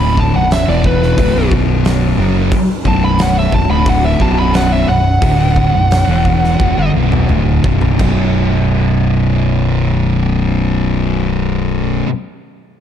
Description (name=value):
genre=stoner and doom metal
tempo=85-90 BPM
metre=4/4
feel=straight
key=B minor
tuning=A4 = 441 Hz
part: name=fuzz lead guitar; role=melody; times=0.0-6.9 s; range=B4 to B5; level=-18 LUFS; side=equal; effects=distortion, tape echo
part: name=thick fuzz guitar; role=riff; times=0.0-12.1 s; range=B1 to F#3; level=-16 LUFS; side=left 7 dB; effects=distortion
part: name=thick fuzz guitar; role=riff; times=0.0-12.1 s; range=B1 to F#3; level=-18 LUFS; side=right 10 dB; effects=distortion
part: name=fingered electric bass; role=bass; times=0.0-12.0 s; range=B0 to G1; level=-17 LUFS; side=equal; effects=overdrive
part: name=oversized low-tuned drum kit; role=drums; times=0.2-8.2 s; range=crash cymbal, hi-hat, kick drum, snare drum, toms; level=-18 LUFS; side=equal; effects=none
room=light reverb, studio reverb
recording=dark, warm production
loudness=-11 LUFS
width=side -9 dB against mid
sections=0.0-8.0 A section; 8.0-10.8 B section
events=lead electric guitar solo 0.0-8.0; slowing down 2.5-8.0; drum fill 6.6-8.0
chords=0.0 Bm; 8.0 B5